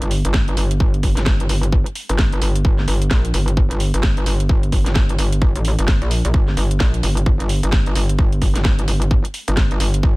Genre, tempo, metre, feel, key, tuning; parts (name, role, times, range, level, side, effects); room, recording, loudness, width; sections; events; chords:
bass house; 130 BPM; 4/4; swing 60% on 16ths; G minor; A4 = 442 Hz
metallic wobble bass; bass; 0.0-10.2 s; G1 to Bb1; -18 LUFS; equal; chorus, tube saturation, sidechain pumping
garage drum kit; drums; 0.0-10.0 s; hi-hat, snare drum; -25 LUFS; equal
electronic kick drum; drums; 0.3-10.1 s; -17 LUFS; equal
little or no reverb; -15 LUFS; side -23 dB against mid
0.0-10.2 A section